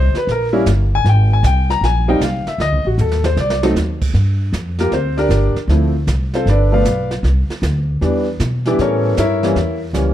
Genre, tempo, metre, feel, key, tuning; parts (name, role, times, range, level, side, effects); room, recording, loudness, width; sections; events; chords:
jazz piano trio; 155 BPM; 4/4; swing 66% on 8ths; A4 = 440 Hz
warm concert grand piano; melody; 0.0-10.1 s; E3 to Bb5; -17 LUFS; left 1 dB
upright bass; bass; 0.0-10.1 s; G1 to B2; -16 LUFS; equal
jazz brush drum kit; drums; 0.1-10.1 s; brushed snare drum, crash cymbal, hi-hat, kick drum, snare drum, toms; -26 LUFS; right 2 dB
light reverb; dark, warm production; -14 LUFS; side -12 dB against mid
0.0-4.1 A section; 4.1-10.1 B section
drum fill 3.0-3.8
0.3 Gm; 1.1 Abmaj9; 2.6 D7(no3) (rootless); 4.1 Gm7; 5.7 Dm7; 6.5 G9; 7.2 Cmaj9; 8.8 A7b9